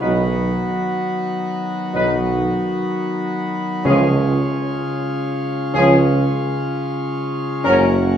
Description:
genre	classical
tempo	94 BPM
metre	3/4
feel	straight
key	Db mixolydian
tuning	A4 = 438 Hz
part	mellow trumpet section	melody	0.0-7.9 s	Ab4 to Cb5	-23 LUFS	left 2 dB	none
part	dark French horn section	sustained chords	0.0-7.9 s	Db4 to Eb4	-20 LUFS	left 2 dB	none
part	dark trombone section	sustained chords	0.0-7.9 s	F3 to Gb3	-24 LUFS	right 2 dB	none
part	pipe organ, principal chorus	sustained chords	0.0-8.2 s	Db3 to Gb4	-21 LUFS	equal	none
part	mellow tuba	bass	0.0-8.2 s	Gb1 to Db2	-19 LUFS	right 3 dB	none
part	timpani	percussion	3.9-4.8 s	Db3	-24 LUFS	right 1 dB	none
room	wet recital hall reverb, RT60 1.5 s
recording	minimal, uncompressed stereo recording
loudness	-17 LUFS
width	side -9 dB against mid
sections	0.0-8.2 A section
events	none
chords	0.0 Cb; 3.9 Db; 7.6 Gb

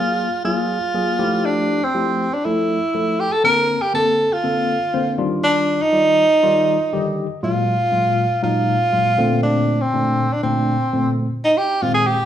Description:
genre	jazz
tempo	120 BPM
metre	4/4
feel	swing 53% on 16ths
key	Bb major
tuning	A4 = 440 Hz
part	clear tenor saxophone	melody	0.0-12.3 s	C4 to Bb4	-17 LUFS	right 1 dB	none
part	tine electric piano	accompaniment	0.0-12.1 s	Bb2 to Eb5	-21 LUFS	left 1 dB	medium stereo tremolo
room	wet large studio reverb, RT60 1.0 s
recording	band playing live in one room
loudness	-16 LUFS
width	side -10 dB against mid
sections	0.0-11.4 A section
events	tine electric piano fill 6.7-7.4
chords	0.0 Gbmaj9; 1.2 Fmaj9; 3.4 Bbmaj9; 5.2 Ebmaj9; 7.4 Gbmaj9; 9.2 Bbmaj9; 11.4 Bb9sus4

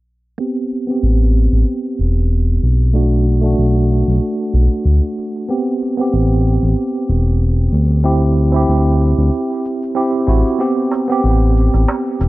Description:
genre	organic downtempo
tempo	94 BPM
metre	4/4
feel	swing 56% on 16ths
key	A dorian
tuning	A4 = 440 Hz
part	bell-like tine electric piano	accompaniment	0.4-12.3 s	A3 to G4	-17 LUFS	right 1 dB	medium stereo tremolo, tape echo
part	cabasa	drums	0.4-12.3 s	none	-52 LUFS	left 5 dB	none
part	smooth synth bass	bass	1.0-12.3 s	E1 to D2	-13 LUFS	equal	none
part	darbuka	percussion	10.9-12.3 s	none	-26 LUFS	right 2 dB	none
room	little or no reverb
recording	dry, gritty hardware recording, cassette tape, low-pass filter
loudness	-13 LUFS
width	side -19 dB against mid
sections	0.4-12.3 A section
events	filter sweep on analog synth bass 0.4-12.3; filter sweep 0.4-12.3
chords	0.4 Am7; 2.9 Bm7; 5.5 Am7; 8.1 D7sus4; 10.6 Am7

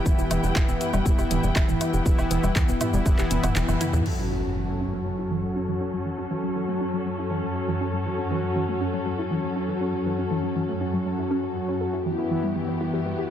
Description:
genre	melodic techno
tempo	120 BPM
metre	4/4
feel	straight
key	F# phrygian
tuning	A4 = 439 Hz
part	muted studio string section	sustained chords	0.0-13.3 s	E3 to G5	-32 LUFS	equal	sidechain pumping, low-pass filter
part	brassy analog pad	stabs	0.0-13.3 s	E3 to F#4	-28 LUFS	left 2 dB	chorus, tremolo, sidechain pumping, digital delay
part	swarming drone	drone	0.0-13.3 s	F#2	-34 LUFS	equal	built-in reverb, sidechain pumping
part	warbly dusty pluck	arpeggios	0.1-13.2 s	E3 to A4	-30 LUFS	right 1 dB	chorus, sidechain pumping, digital delay
part	tight sequencer bass	bass	0.1-4.0 s	E1 to E2	-26 LUFS	equal	sidechain pumping
part	electronic kick drum	drums	0.1-3.2 s	none	-22 LUFS	equal	none
part	house drum kit	drums	0.1-4.2 s	crash cymbal, handclaps, hi-hat, shaker, toms, woodblock	-30 LUFS	right 1 dB	sidechain pumping on perc, sidechain pumping on hats, sidechain pumping on toms, sidechain pumping on cymbals
part	impact	sound effects	4.1-6.1 s	none	-34 LUFS	equal	none
room	light reverb, digital ambience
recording	none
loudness	-23 LUFS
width	side -10 dB against mid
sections	0.0-4.1 A section; 4.1-13.3 B section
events	filter sweep on synth arpeggio sound 0.0-4.1; kick drops out 3.6-4.1; drum fill 3.6-4.1; band accent 3.6; impact 4.1-6.1; filter sweep on analog synth pad 4.1-13.3; filter sweep on string section 4.1-13.3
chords	0.0 Em; 4.1 F#m7; 12.1 Em

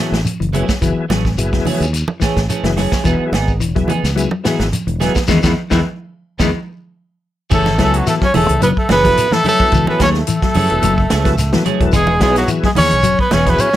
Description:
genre	afrobeat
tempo	108 BPM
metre	4/4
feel	swing 54% on 16ths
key	F# dorian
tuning	A4 = 440 Hz
part	tonewheel organ	accompaniment	0.0-13.7 s	F#3 to A4	-22 LUFS	left 3 dB	slow rotary speaker, chorus vibrato
part	clean electric guitar	arpeggios	0.0-13.8 s	D#3 to G#3	-20 LUFS	left 6 dB	warbly pitch drift, slapback echo
part	clean electric guitar	stabs	0.0-13.5 s	E3 to G#4	-23 LUFS	right 7 dB	analog chorus
part	fingered electric bass	bass	0.1-13.5 s	E1 to F#2	-18 LUFS	equal	none
part	warm soul drum kit	drums	0.1-13.8 s	crash cymbal, hi-hat, kick drum, snare drum	-20 LUFS	equal	none
part	shekere	percussion	0.1-13.7 s	none	-25 LUFS	left 2 dB	none
part	congas	percussion	0.2-13.8 s	none	-23 LUFS	right 4 dB	none
part	warm trumpet	melody	7.5-13.8 s	F#4 to C#5	-16 LUFS	equal	slapback echo
part	edgy tenor saxophone	second line	7.5-13.8 s	F#3 to C#4	-23 LUFS	right 3 dB	none
room	light reverb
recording	none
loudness	-13 LUFS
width	side -13 dB against mid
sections	0.0-7.5 A section; 7.5-13.8 B section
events	band accent 5.3-7.5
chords	0.0 F#m9; 3.1 Emaj7; 7.5 F#m9; 11.9 Emaj7

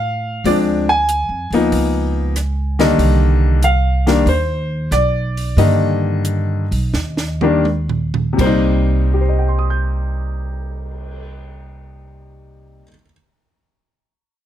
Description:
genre	jazz piano trio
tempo	81-95 BPM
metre	4/4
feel	swing 69% on 8ths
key	C minor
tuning	A4 = 440 Hz
part	warm concert grand piano	melody	0.0-13.1 s	C3 to G6	-17 LUFS	left 2 dB	none
part	upright bass	bass	0.0-12.8 s	B1 to A2	-18 LUFS	right 1 dB	none
part	compact cocktail drum kit	drums	0.5-11.2 s	crash cymbal, cymbal swell, hi-hat, kick drum, rim click, snare drum, toms	-25 LUFS	right 4 dB	none
room	light reverb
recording	none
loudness	-14 LUFS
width	side -11 dB against mid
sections	0.0-8.4 A section; 8.4-11.4 B section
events	slowing down 3.0-8.4; drum fill 6.9-8.4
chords	0.5 Dm7b5; 1.7 Db13; 3.0 Cm7

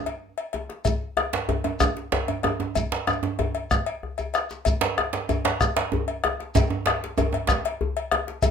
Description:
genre	west african traditional, West African drum ensemble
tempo	127 BPM (dotted quarters)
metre	12/8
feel	straight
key	none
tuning	none
part	cowbell	percussion	0.1-8.5 s	none	-29 LUFS	left 6 dB	none
part	djembe	percussion	0.1-8.5 s	none	-30 LUFS	left 4 dB	none
part	bombo	percussion	0.7-8.5 s	none	-24 LUFS	left 1 dB	none
part	shekere	percussion	0.9-8.5 s	none	-31 LUFS	left 1 dB	none
part	djembe	percussion	1.3-7.6 s	none	-26 LUFS	right 5 dB	none
room	moderate studio reverb, RT60 0.5 s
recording	minimal, uncompressed stereo recording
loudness	-23 LUFS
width	side -7 dB against mid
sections	0.0-8.5 A section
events	drum fill 4.0-4.7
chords	none

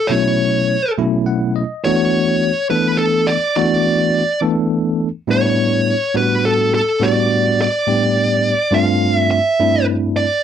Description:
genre	jazz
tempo	70 BPM (dotted quarters)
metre	6/8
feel	straight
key	unclear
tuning	A4 = 440 Hz
part	smooth overdriven lead guitar	melody	0.0-10.4 s	A4 to F5	-16 LUFS	equal	slapback echo
part	bell-like tine electric piano	accompaniment	0.1-10.3 s	G2 to F#5	-16 LUFS	equal	medium stereo tremolo
room	light reverb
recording	dry, close 1970s-style studio recording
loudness	-14 LUFS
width	side -9 dB against mid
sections	0.0-10.4 A section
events	tine electric piano fill 1.0-1.8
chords	0.0 B9sus4; 1.8 E9sus4; 5.3 A9sus4; 8.7 G9sus4

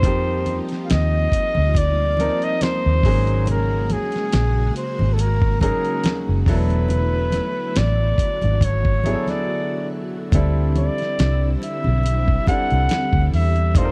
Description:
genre	R&B, neo-soul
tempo	70 BPM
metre	4/4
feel	swing 55% on 16ths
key	unclear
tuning	A4 = 439 Hz
part	clear flugelhorn	melody	0.0-13.9 s	G#4 to F#5	-26 LUFS	equal	tape echo
part	clear grand piano	accompaniment	0.0-13.9 s	F3 to Bb4	-29 LUFS	equal	none
part	string machine, violins	sustained chords	0.0-13.9 s	Bb2 to F#4	-33 LUFS	equal	ensemble chorus
part	vintage muted fingered electric bass	bass	0.0-13.9 s	E1 to F2	-22 LUFS	equal	none
part	dusty soul sampler-style drum kit	drums	0.0-13.9 s	hi-hat, kick drum, snare drum	-23 LUFS	equal	none
part	congas	percussion	0.0-13.9 s	none	-32 LUFS	equal	none
room	small room ambience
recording	dry, close 1970s-style studio recording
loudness	-20 LUFS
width	mono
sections	0.0-13.9 A section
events	break 9.5-10.3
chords	0.0 F9sus4; 3.0 G#9sus4; 6.5 E9sus4; 10.3 D9sus4

